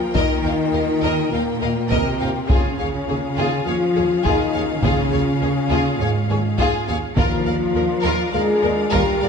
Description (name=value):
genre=cinematic, epic orchestral film score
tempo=103 BPM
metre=4/4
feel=straight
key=unclear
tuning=A4 = 443 Hz
part: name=warm symphonic string section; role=sustained chords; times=0.0-9.3 s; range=Bb3 to G5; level=-28 LUFS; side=left 1 dB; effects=none
part: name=warm symphonic cello section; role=bass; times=0.0-9.3 s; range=Ab2 to Ab3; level=-24 LUFS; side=right 3 dB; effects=none
part: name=rich symphonic viola section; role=accompaniment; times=0.1-9.3 s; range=Ab4 to Bb4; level=-28 LUFS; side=equal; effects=none
part: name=taiko ensemble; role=drums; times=0.1-9.3 s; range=none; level=-23 LUFS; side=equal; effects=none
part: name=warm symphonic violin section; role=melody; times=0.2-9.3 s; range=Ab4 to G5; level=-28 LUFS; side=left 4 dB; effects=none
part: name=rich symphonic violin section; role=second line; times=0.2-9.3 s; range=F4 to F5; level=-28 LUFS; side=left 2 dB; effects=none
part: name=mellow French horn section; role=sustained chords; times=0.2-9.3 s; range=Ab3 to Ab4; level=-23 LUFS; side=left 5 dB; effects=none
part: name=clear symphonic double bass section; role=bass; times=0.2-9.3 s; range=Eb2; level=-27 LUFS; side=right 5 dB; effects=none
part: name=timpani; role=percussion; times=7.2-8.0 s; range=Eb3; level=-28 LUFS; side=equal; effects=none
room=moderate scoring stage reverb, RT60 1.5 s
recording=dark, warm production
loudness=-17 LUFS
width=side -6 dB against mid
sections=0.0-9.3 A section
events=none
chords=0.0 Ebadd9; 2.5 Db/Eb; 7.2 Bb/Eb